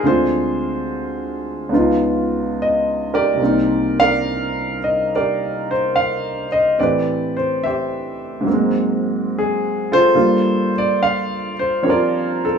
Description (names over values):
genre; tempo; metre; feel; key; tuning
jazz ballad; 71 BPM; 4/4; swing 66% on 8ths; unclear; A4 = 440 Hz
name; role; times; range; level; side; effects
warm concert grand piano; solo; 0.0-12.6 s; C2 to F5; -16 LUFS; equal; none
room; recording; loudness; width
moderate studio reverb, RT60 0.5 s; band playing live in one room, small room ambience; -16 LUFS; side -6 dB against mid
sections
0.0-12.6 A section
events
none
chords
0.0 Dm7b5; 1.7 C#9; 3.4 Cm9; 6.8 Am9; 8.5 Ab9; 10.2 Gm9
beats
| 0.03 0.87 1.71 2.56 | 3.41 4.25 5.09 5.94 | 6.78 7.63 8.47 9.31 | 10.16 11.00 11.84